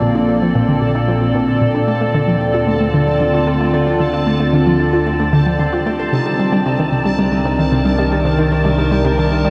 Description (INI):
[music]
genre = ambient, sequencer-driven space music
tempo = 113 BPM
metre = 4/4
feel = straight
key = unclear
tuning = A4 = 440 Hz
[part]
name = evolving wavetable pad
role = sustained chords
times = 0.0-9.5 s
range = Bb2 to D5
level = -19 LUFS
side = equal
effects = chorus, built-in reverb, shimmer reverb
[part]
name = concert harp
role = arpeggios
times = 0.0-9.5 s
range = G3 to C5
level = -28 LUFS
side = equal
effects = tape echo, shimmer reverb
[part]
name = analog pluck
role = riff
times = 0.0-9.5 s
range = Bb2 to F4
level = -20 LUFS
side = equal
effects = chorus, cassette tape, tape echo
[part]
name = fat analog bass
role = bass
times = 0.0-9.5 s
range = Bb1 to D2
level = -27 LUFS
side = equal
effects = none
[part]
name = bubbling stepped-filter texture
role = texture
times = 0.0-9.5 s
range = A5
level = -28 LUFS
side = equal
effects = chorus, built-in reverb, shimmer reverb
[sound]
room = wet cathedral reverb, RT60 6.2 s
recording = in a vast, echoing space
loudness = -15 LUFS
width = mono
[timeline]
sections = 0.0-9.5 A section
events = fade-in on harp 0.0-9.5; fade-in on analog synth bass 0.0-9.5; filter sweep on synth arpeggio sound 0.0-9.5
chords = 0.0 Bbmaj7; 1.9 Dm7; 6.1 Cm7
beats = 0.28 0.82 1.35 | 1.88 2.41 2.94 3.47 | 4.00 4.53 5.06 5.59 | 6.13 6.66 7.19 7.72 | 8.25 8.78 9.31